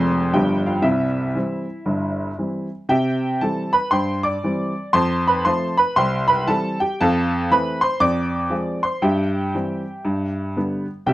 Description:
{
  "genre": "jazz, stride piano",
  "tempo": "117 BPM",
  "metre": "4/4",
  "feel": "swing 63% on 8ths",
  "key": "C major",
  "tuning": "A4 = 440 Hz",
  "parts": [
    { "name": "clear upright piano", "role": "solo", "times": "0.0-11.1 s", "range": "F1 to D6", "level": "-18 LUFS", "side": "equal", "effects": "none" }
  ],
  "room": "light reverb",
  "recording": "close, detailed microphones",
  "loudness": "-18 LUFS",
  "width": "side -16 dB against mid",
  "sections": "0.0-2.9 A section; 2.9-11.1 A section",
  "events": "none",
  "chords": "0.3 G7; 0.8 C; 4.9 F; 6.0 C; 7.0 Fmaj7; 8.0 Fm; 9.0 C/G; 10.0 G"
}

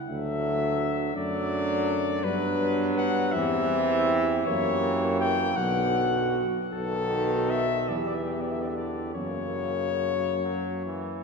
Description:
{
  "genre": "classical, hymn-like piece for brass band",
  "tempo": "46-56 BPM (dotted quarters)",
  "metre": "6/8",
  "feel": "rubato",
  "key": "B minor",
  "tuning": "A4 = 439 Hz",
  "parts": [
    { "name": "mellow flugelhorn", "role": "melody", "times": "0.1-11.2 s", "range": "A4 to G5", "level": "-28 LUFS", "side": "left 4 dB", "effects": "none" },
    { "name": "dark French horn section", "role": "second line", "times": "0.1-11.2 s", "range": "D4 to G4", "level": "-32 LUFS", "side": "right 6 dB", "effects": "none" },
    { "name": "brilliant trombone", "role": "accompaniment", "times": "0.1-11.2 s", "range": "C#3 to F#3", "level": "-34 LUFS", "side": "right 4 dB", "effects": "none" },
    { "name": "warm euphonium", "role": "accompaniment", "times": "0.1-11.2 s", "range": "A3 to C4", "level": "-33 LUFS", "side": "left 1 dB", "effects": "none" },
    { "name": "mellow tuba", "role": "bass", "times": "0.1-11.2 s", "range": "B1 to G2", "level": "-31 LUFS", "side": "equal", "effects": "none" }
  ],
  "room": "wet church reverb, RT60 3.4 s",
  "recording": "none",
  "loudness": "-24 LUFS",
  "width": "side -4 dB against mid",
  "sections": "0.0-11.2 A section",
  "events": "none",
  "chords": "0.1 D; 2.3 Gmaj7; 3.4 C/E; 4.5 F#7b9; 5.6 Bm; 6.7 B7; 7.9 Em; 9.2 F#"
}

